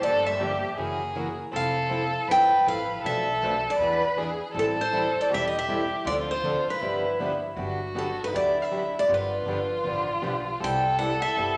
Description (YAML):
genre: acoustic string swing (jazz manouche)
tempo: 159 BPM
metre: 4/4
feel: swing 63% on 8ths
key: G major from 7.6 s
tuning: A4 = 439 Hz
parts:
  - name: picked steel-string acoustic guitar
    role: melody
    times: 0.0-11.6 s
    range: A4 to G5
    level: -28 LUFS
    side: equal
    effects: none
  - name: warm violin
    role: second line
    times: 0.0-11.6 s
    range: Eb4 to B4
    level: -32 LUFS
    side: equal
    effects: none
  - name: picked plugged-in steel-string acoustic guitar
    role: accompaniment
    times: 0.0-11.6 s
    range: B2 to A4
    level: -36 LUFS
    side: equal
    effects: none
  - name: picked swing-style acoustic guitar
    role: accompaniment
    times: 0.0-11.6 s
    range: B2 to B4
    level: -37 LUFS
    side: equal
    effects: none
  - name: upright bass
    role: bass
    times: 0.0-11.6 s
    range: E1 to E2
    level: -40 LUFS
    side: equal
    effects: none
room: wet large studio reverb, RT60 1.3 s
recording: nothing above 10.3 kHz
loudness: -26 LUFS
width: mono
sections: 0.0-7.6 A section; 7.6-11.6 B section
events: none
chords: 0.0 Gm9; 0.8 F#9; 1.5 Fmaj9; 3.0 Bm7b5; 3.8 E7; 4.6 Am7; 6.1 Dm7; 6.8 G6; 7.6 Gmaj7; 9.1 G7; 10.6 Cmaj7